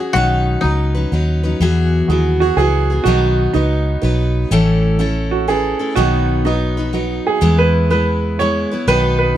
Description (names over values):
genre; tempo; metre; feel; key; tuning
country; 124 BPM; 3/4; swing 65% on 8ths; E major; A4 = 440 Hz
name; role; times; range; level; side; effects
koto; melody; 0.0-3.0 s; D#4 to G#4; -20 LUFS; left 2 dB; none
picked steel-string acoustic guitar; accompaniment; 0.0-9.4 s; A2 to B4; -19 LUFS; left 2 dB; none
vintage muted fingered electric bass; bass; 0.1-9.4 s; A1 to E2; -17 LUFS; equal; none
warm baby grand piano; accompaniment; 2.1-9.4 s; C#4 to C#5; -25 LUFS; right 5 dB; none
bright upright piano; second line; 2.4-9.4 s; D#4 to C#5; -18 LUFS; right 5 dB; none
room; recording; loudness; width
light reverb; dark, warm production; -13 LUFS; side -12 dB against mid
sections
0.0-1.6 A section; 1.6-9.4 A section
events
upright piano solo 1.6-9.4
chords
0.1 Badd9; 1.6 Eadd9; 3.1 B; 4.5 A; 6.0 B; 7.4 E